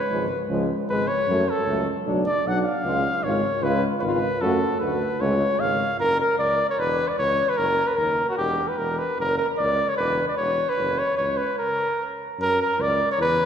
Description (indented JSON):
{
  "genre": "balkan folk, Balkan brass band",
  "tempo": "152 BPM",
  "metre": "2/4",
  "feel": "swing 55% on 16ths",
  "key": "C# phrygian dominant, F# phrygian dominant from 6.0 s",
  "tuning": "A4 = 441 Hz",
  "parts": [
    { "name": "mellow cornet", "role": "melody", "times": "0.0-13.5 s", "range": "F#4 to F#5", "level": "-22 LUFS", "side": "equal", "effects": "none" },
    { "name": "mellow euphonium", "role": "accompaniment", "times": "0.1-5.8 s", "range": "E#3 to A3", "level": "-30 LUFS", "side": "right 3 dB", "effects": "none" },
    { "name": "warm French horn", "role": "accompaniment", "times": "0.1-5.8 s", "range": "G#3 to F#4", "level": "-29 LUFS", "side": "left 2 dB", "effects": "none" },
    { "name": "mellow tuba", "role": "bass", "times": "0.1-13.4 s", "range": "E1 to F#2", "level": "-28 LUFS", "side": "equal", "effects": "none" }
  ],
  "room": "wet church reverb, RT60 2.5 s",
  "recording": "recorded in a church or concert hall",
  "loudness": "-21 LUFS",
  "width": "side -8 dB against mid",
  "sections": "0.0-6.0 A section; 6.0-12.4 B section; 12.4-13.5 B section",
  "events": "cornet solo 0.0-6.0; break 11.6-12.4",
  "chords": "0.0 C#; 1.3 F#m; 2.1 Bm; 2.9 C#; 4.4 F#m; 5.2 C#; 6.0 F#5; 6.8 C#m7/E; 7.6 F#6; 8.4 Em; 9.2 F#5; 10.0 C#m7/E; 10.8 F#5; 11.6 N.C.; 12.4 F#5"
}